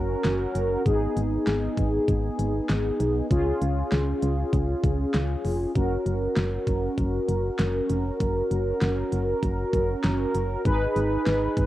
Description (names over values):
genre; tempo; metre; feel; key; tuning
synth-pop; 98 BPM; 4/4; straight; unclear; A4 = 439 Hz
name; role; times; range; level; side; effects
mellow synth brass; accompaniment; 0.0-11.7 s; B3 to B4; -26 LUFS; equal; chorus
solid FM bass; bass; 0.0-11.7 s; E#1 to C#2; -27 LUFS; equal; none
pop drum kit; drums; 0.2-11.7 s; hi-hat, kick drum, snare drum; -28 LUFS; equal; cassette tape
room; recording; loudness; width
moderate spring reverb, RT60 1.4 s; home recording on cassette; -23 LUFS; side -14 dB against mid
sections
0.0-11.7 A section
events
none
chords
0.0 F#; 0.9 G#m; 3.3 C#; 5.8 F#; 10.7 G#m